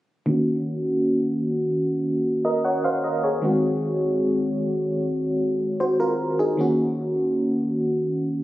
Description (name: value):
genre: R&B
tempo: 76 BPM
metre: 4/4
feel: straight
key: Eb dorian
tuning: A4 = 441 Hz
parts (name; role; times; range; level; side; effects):
- FM electric piano with tremolo; solo; 0.3-8.4 s; Eb3 to Gb5; -20 LUFS; equal; low-pass filter, tape echo
room: moderate plate reverb, RT60 3.0 s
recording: recorded on a phone in the room, club reverb, compression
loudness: -21 LUFS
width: side -16 dB against mid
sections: 0.3-6.6 A section; 6.6-8.4 B section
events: none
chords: 0.3 Ebm7